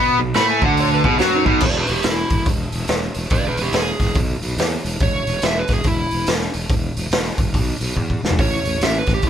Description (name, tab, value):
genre	blues rock power trio and southern rock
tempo	142 BPM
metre	4/4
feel	swing 63% on 8ths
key	unclear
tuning	A4 = 441 Hz
part	cranked stack guitar	riff	0.0-1.6 s	B2 to B3	-16 LUFS	equal	overdrive
part	fuzz fingered electric bass	bass	0.0-9.3 s	E1 to B2	-24 LUFS	equal	overdrive
part	raw garage drum kit	drums	0.3-9.3 s	crash cymbal, hi-hat, kick drum, snare drum, toms	-20 LUFS	equal	none
part	overdriven slide guitar	melody	0.4-9.3 s	D#4 to B5	-22 LUFS	right 2 dB	none
room	light reverb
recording	band playing live in one room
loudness	-16 LUFS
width	side -9 dB against mid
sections	0.0-1.6 A section; 1.6-9.3 B section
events	electric slide guitar solo 1.6-9.3; drum fill 8.0-8.4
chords	0.0 B5; 1.6 N.C.; 8.4 A